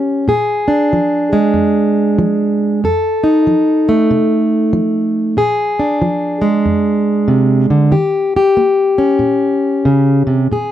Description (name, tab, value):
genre	blues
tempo	94 BPM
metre	4/4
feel	swing 64% on 8ths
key	Bb mixolydian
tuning	A4 = 440 Hz
part	fingerpicked plugged-in steel-string acoustic guitar	solo	0.0-10.7 s	F2 to A4	-11 LUFS	equal	none
room	light reverb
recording	dry, close 1970s-style studio recording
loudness	-11 LUFS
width	side -11 dB against mid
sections	0.0-5.4 A section; 5.4-10.7 B section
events	none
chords	0.3 Bb7; 2.8 F7; 5.4 Bb7; 7.9 Eb7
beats	| 0.28 0.92 1.56 2.19 | 2.83 3.46 4.10 4.74 | 5.37 6.01 6.65 7.29 | 7.93 8.57 9.21 9.86 | 10.50